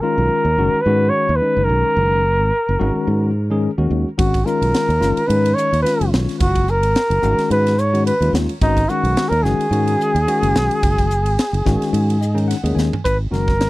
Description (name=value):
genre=electric jazz fusion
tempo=108 BPM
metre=4/4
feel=swing 55% on 16ths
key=G# dorian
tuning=A4 = 440 Hz
part: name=trumpet with bucket mute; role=melody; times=0.0-13.7 s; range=D#4 to C#5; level=-19 LUFS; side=equal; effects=none
part: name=tine electric piano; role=accompaniment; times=0.0-13.7 s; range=D#3 to G#5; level=-22 LUFS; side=left 3 dB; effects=medium stereo tremolo
part: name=fingered electric bass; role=bass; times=0.2-13.7 s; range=F#1 to G#2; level=-18 LUFS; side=equal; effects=none
part: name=crisp fusion drum kit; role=drums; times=4.2-13.7 s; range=hi-hat, kick drum, ride cymbal, snare drum, toms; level=-23 LUFS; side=equal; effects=none
room=little or no reverb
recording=dry, close 1970s-style studio recording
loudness=-15 LUFS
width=side -18 dB against mid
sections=0.0-13.0 A section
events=tine electric piano fill 11.9-13.0; drum fill 12.8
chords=0.0 G#7sus2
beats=0.30 0.86 1.41 | 1.97 2.52 3.08 3.63 | 4.18 4.74 5.29 5.85 | 6.40 6.96 7.51 8.06 | 8.62 9.17 9.72 10.28 | 10.83 11.38 11.94 12.49 | 13.04 13.60